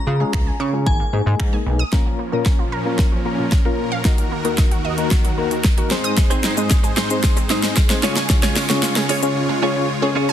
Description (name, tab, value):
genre	dance-pop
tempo	113 BPM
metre	4/4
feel	straight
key	Bb minor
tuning	A4 = 441 Hz
part	glassy synth bell	melody	0.0-1.4 s	Ab5 to Bb5	-30 LUFS	left 2 dB	chorus, tape echo
part	soft electric-piano-like synth keys	accompaniment	0.0-10.3 s	Ab3 to Eb5	-24 LUFS	left 4 dB	chorus, tremolo, sidechain pumping
part	wide unison pluck	arpeggios	0.0-10.3 s	Bb2 to Eb6	-28 LUFS	right 4 dB	phaser, sidechain pumping, tape echo
part	chorused synth bass	bass	0.1-1.8 s	Ab1 to Db3	-19 LUFS	equal	sidechain pumping
part	pop drum kit	drums	0.3-9.3 s	finger snaps, hi-hat, kick drum, shaker, snare drum	-17 LUFS	equal	soft clipping on snare
part	supersaw chords	sustained chords	1.9-10.3 s	Eb2 to Db5	-24 LUFS	right 1 dB	sidechain pumping
part	direct-recorded clean electric guitar	riff	6.2-10.3 s	C4 to Db5	-26 LUFS	right 4 dB	wide subtle chorus
room	light reverb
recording	dense, heavily limited modern master, lossy compression artefacts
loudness	-16 LUFS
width	side -10 dB against mid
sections	0.0-1.9 A section; 1.9-10.3 B section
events	build-up 1.9-10.3; drum fill 1.9-9.4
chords	0.0 Db; 0.9 Absus2; 1.9 Bbm; 4.1 Ebm; 5.9 Ab; 8.0 Db